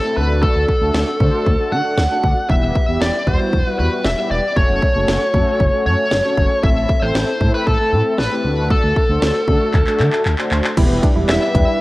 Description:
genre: synth-pop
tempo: 116 BPM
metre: 4/4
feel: straight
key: E minor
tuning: A4 = 440 Hz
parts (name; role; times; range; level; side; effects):
- smooth overdriven lead guitar; melody; 0.0-11.8 s; A4 to F#5; -19 LUFS; left 1 dB; none
- mellow synth brass; accompaniment; 0.0-11.8 s; G3 to C5; -22 LUFS; equal; chorus
- smooth gliding synth bass; bass; 0.2-11.6 s; E1 to D3; -19 LUFS; equal; none
- house drum kit; drums; 0.4-11.7 s; crash cymbal, handclaps, hi-hat, kick drum, snare drum; -18 LUFS; equal; none
- warbly dusty pluck; arpeggios; 10.8-11.8 s; D4 to E4; -24 LUFS; right 2 dB; chorus
room: moderate lush hall reverb, RT60 1.8 s, digital ambience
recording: worn, warbling old tape, cassette tape, warbly pitch drift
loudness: -14 LUFS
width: side -19 dB against mid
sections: 0.0-10.8 A section; 10.8-11.8 B section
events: drum fill 9.7-10.8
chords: 0.2 D; 2.5 Em; 4.6 F#m; 6.6 Am; 8.4 D; 10.8 Em

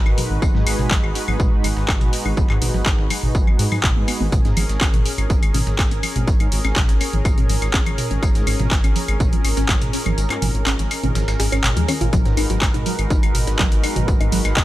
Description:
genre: melodic techno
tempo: 123 BPM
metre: 4/4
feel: straight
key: G# dorian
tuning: A4 = 439 Hz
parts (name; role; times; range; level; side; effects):
- warm analog pad; sustained chords; 0.0-14.6 s; G#3 to B4; -27 LUFS; right 1 dB; chorus, tremolo, sidechain pumping
- granular cloud pad; texture; 1.1-14.6 s; B3 to G#5; -37 LUFS; equal; none
- tight sequenced synth; arpeggios; 0.1-14.6 s; E#3 to G#4; -27 LUFS; equal; chorus, phaser, sidechain pumping, tape echo
- dark detuned saw bass; bass; 0.1-14.6 s; G#1 to G#2; -22 LUFS; equal; sidechain pumping
- techno drum kit; drums; 0.1-14.6 s; claves, handclaps, hi-hat, toms; -24 LUFS; equal; overdrive, sidechain pumping on toms, studio reverb, sidechain pumping on cymbals, sidechain pumping on hats, sidechain pumping on perc
- dusty soul sampler-style drum kit; drums; 0.2-14.6 s; hi-hat, snare drum, tambourine; -34 LUFS; right 1 dB; none
- electronic kick drum; drums; 0.4-14.6 s; none; -18 LUFS; equal; overdrive, studio reverb
room: little or no reverb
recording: none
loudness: -16 LUFS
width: side -16 dB against mid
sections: 0.0-14.6 A section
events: filter sweep on synth arpeggio sound 0.0-14.6; kick drops out 10.2-12.1; drum fill 11.8-12.1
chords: 0.0 G#m7; 4.3 A#m7/G#; 12.1 G#m7

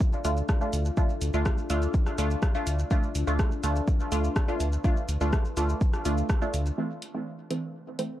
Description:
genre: dub techno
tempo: 124 BPM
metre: 4/4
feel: straight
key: unclear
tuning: A4 = 436 Hz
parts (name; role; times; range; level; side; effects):
- deep dark ambient pad; sustained chords; 0.1-8.2 s; C4 to D5; -38 LUFS; left 6 dB; chorus, built-in reverb, sidechain pumping
- filtered dub chord stab; stabs; 0.0-8.2 s; E3 to F4; -31 LUFS; right 1 dB; chorus, phaser, sidechain pumping, dub echo
- deep house drum kit; drums; 0.0-8.1 s; hi-hat, rim click, shaker; -37 LUFS; equal; dub echo
- electronic kick drum; drums; 0.0-6.4 s; none; -25 LUFS; equal; overdrive
- round analog bass; bass; 0.2-6.7 s; D2; -27 LUFS; equal; tube saturation, sidechain pumping
room: little or no reverb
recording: dry, gritty hardware recording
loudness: -25 LUFS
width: side -13 dB against mid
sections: 0.0-6.8 A section; 6.8-8.2 B section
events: filter sweep on synth stab 6.8-8.2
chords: 0.0 Dm; 6.8 Am

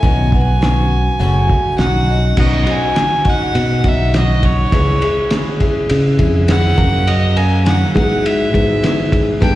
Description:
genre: folk rock and heartland rock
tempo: 102 BPM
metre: 4/4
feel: straight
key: unclear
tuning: A4 = 440 Hz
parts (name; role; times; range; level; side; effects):
- rich fiddle; melody; 0.0-9.6 s; C#5 to G#5; -20 LUFS; right 1 dB; tape echo
- picked acoustic archtop guitar; accompaniment; 0.0-9.6 s; F#2 to A#4; -20 LUFS; left 3 dB; slapback echo
- fingered electric bass; bass; 0.0-9.6 s; F#1 to C#3; -15 LUFS; equal; none
- cloth-damped thuddy drum kit; drums; 0.0-9.6 s; crash cymbal, hi-hat, kick drum, ride cymbal, snare drum; -18 LUFS; equal; none
room: studio reverb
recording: live gig heard through the venue's PA, recital hall reverb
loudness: -12 LUFS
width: side -15 dB against mid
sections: 0.0-2.4 A section; 2.4-9.6 B section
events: none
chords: 0.0 Badd9; 1.2 F#m; 1.8 Badd9; 4.7 C#m; 6.8 F#; 7.9 Eadd9/G#

